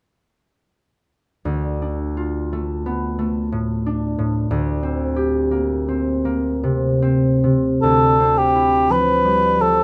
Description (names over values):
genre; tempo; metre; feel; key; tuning
classical, impressionist duo for cor anglais and harp; 48-62 BPM; 3/4; rubato; D minor; A4 = 443 Hz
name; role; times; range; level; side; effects
concert harp; accompaniment; 1.5-9.8 s; D2 to G4; -21 LUFS; equal; none
mellow cor anglais; melody; 7.8-9.8 s; G4 to B4; -17 LUFS; equal; none
room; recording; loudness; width
light reverb; dark, warm production; -19 LUFS; mono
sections
1.4-7.8 A section; 7.8-9.8 B section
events
none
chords
1.4 Dm; 4.5 Csus2/D; 7.8 Dm11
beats
| 1.45 2.52 3.53 | 4.51 5.52 6.62 | 7.82 8.90